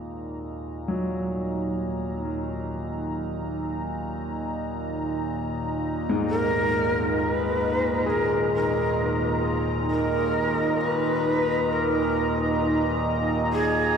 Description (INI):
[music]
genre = dark ambient drone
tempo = free time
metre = none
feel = none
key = Eb minor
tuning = A4 = 440 Hz
[part]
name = sweeping resonant pad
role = sustained chords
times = 0.0-14.0 s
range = Eb4 to Bb5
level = -29 LUFS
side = right 2 dB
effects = chorus
[part]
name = warm concert grand piano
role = arpeggios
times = 0.0-14.0 s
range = Ab2 to Ab4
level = -30 LUFS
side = left 2 dB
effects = tape echo
[part]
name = overtone-sweeping drone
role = drone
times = 0.0-14.0 s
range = Eb2 to Bb2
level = -29 LUFS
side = equal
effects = chorus, built-in reverb
[part]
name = breathy shakuhachi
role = melody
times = 6.3-14.0 s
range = Ab4 to Cb5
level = -26 LUFS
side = right 1 dB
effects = tape echo
[sound]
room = wet cathedral reverb, RT60 6.0 s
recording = dark, warm production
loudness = -23 LUFS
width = side -6 dB against mid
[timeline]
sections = 0.0-14.0 A section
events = fade-in on synth drone 0.0-14.0; fade-in on analog synth pad 0.0-14.0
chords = 0.0 Eb5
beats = free time